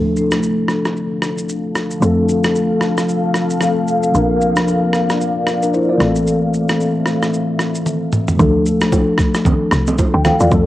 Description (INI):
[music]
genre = afrobeats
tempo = 113 BPM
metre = 4/4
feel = swing 58% on 16ths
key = unclear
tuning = A4 = 441 Hz
[part]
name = mellow tine electric piano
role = accompaniment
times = 0.0-10.7 s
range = E3 to G5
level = -16 LUFS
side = left 1 dB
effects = ensemble chorus, low-pass filter, cassette tape
[part]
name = deep dark ambient pad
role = sustained chords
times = 0.0-8.4 s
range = D3 to F5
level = -21 LUFS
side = equal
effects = chorus, built-in reverb, low-pass filter, cassette tape
[part]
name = woody log drum bass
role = bass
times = 0.0-10.7 s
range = A1 to F2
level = -19 LUFS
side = equal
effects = none
[part]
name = dusty soul sampler-style drum kit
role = drums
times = 0.2-10.7 s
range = kick drum, rim click, shaker, toms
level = -20 LUFS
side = equal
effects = none
[part]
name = congas and bongos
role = percussion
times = 8.4-10.7 s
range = none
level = -20 LUFS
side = right 3 dB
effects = none
[sound]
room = light reverb, digital ambience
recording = home recording on cassette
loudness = -14 LUFS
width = side -15 dB against mid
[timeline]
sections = 0.0-8.4 A section; 8.4-10.7 B section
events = filter sweep 0.0-8.4; drum fill 7.9-8.4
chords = 0.0 Dm; 2.0 F; 4.1 Bb; 6.0 Am; 8.4 Dm